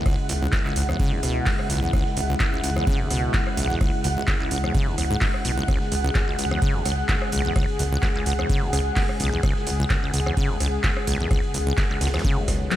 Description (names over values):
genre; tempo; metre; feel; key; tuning
acid house; 128 BPM; 4/4; swing 55% on 16ths; C# minor; A4 = 440 Hz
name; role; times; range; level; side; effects
warm analog pad; sustained chords; 0.0-12.8 s; C#3 to G#4; -30 LUFS; left 2 dB; chorus, sidechain pumping
acid bass, saw; riff; 0.0-12.8 s; B1 to C#3; -28 LUFS; equal; tube saturation, sidechain pumping
granular cloud pad; texture; 0.0-12.8 s; F#5; -31 LUFS; right 2 dB; built-in reverb, sidechain pumping
booming analog drum machine; drums; 0.1-12.8 s; handclaps, hi-hat, ride cymbal, rim click, toms; -30 LUFS; equal; none
breakbeat sampler-style drum kit; drums; 0.1-12.8 s; hi-hat, ride cymbal, snare drum; -39 LUFS; right 2 dB; none
electronic kick drum; drums; 0.1-12.6 s; none; -24 LUFS; equal; none
round analog bass; bass; 0.3-12.7 s; B1 to C#2; -27 LUFS; equal; sidechain pumping
room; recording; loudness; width
digital ambience; none; -20 LUFS; side -13 dB against mid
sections
0.0-12.8 A section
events
none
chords
0.0 C#m